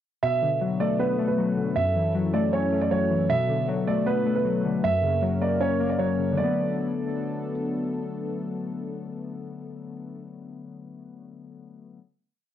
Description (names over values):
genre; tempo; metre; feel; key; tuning
hip hop, trap; 156 BPM; 4/4; half-time; B minor; A4 = 441 Hz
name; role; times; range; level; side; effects
dark concert grand piano; melody; 0.2-7.5 s; B4 to E5; -26 LUFS; right 6 dB; low-pass filter, tape echo
warbly lo-fi synth keys; accompaniment; 0.2-12.0 s; F#2 to C#4; -26 LUFS; left 4 dB; chorus, low-pass filter, cassette tape
warm analog pad; sustained chords; 0.2-10.2 s; F#3 to A#4; -33 LUFS; right 1 dB; chorus, cassette tape
room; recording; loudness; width
wet studio reverb, RT60 0.6 s; home recording on cassette; -23 LUFS; side -10 dB against mid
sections
0.2-6.4 breakdown; 6.4-9.5 final chord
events
none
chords
0.2 Bm7; 1.8 F#m7; 3.3 Bm7; 4.8 F#; 6.4 Bm7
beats
| 0.22 0.61 0.99 1.38 | 1.76 2.15 2.53 2.91 | 3.30 3.68 4.07 4.45 | 4.84 5.22 5.61 5.99 | 6.38 6.76 7.14 7.53 | 7.91 8.30 8.68 9.07